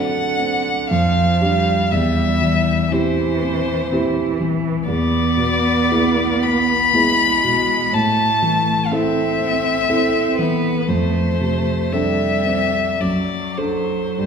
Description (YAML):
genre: classical, slow romantic movement for piano trio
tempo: 47-62 BPM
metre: 3/4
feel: rubato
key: C major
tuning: A4 = 439 Hz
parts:
  - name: rich violin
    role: melody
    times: 0.0-14.3 s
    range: B4 to B5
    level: -20 LUFS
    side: left 4 dB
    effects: none
  - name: rich cello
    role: second line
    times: 0.0-14.3 s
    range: D3 to C4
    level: -23 LUFS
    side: right 4 dB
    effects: none
  - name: dark concert grand piano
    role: accompaniment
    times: 0.0-14.3 s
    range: E2 to A4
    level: -19 LUFS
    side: right 1 dB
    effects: none
room: wet recital hall reverb, RT60 1.6 s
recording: recorded in a church or concert hall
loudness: -16 LUFS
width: side -6 dB against mid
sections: 0.0-14.3 A section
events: none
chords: 0.0 D7/F#; 0.9 G5/F; 1.9 C/E; 4.9 E7; 7.9 Am; 10.9 F6; 13.0 D7/F#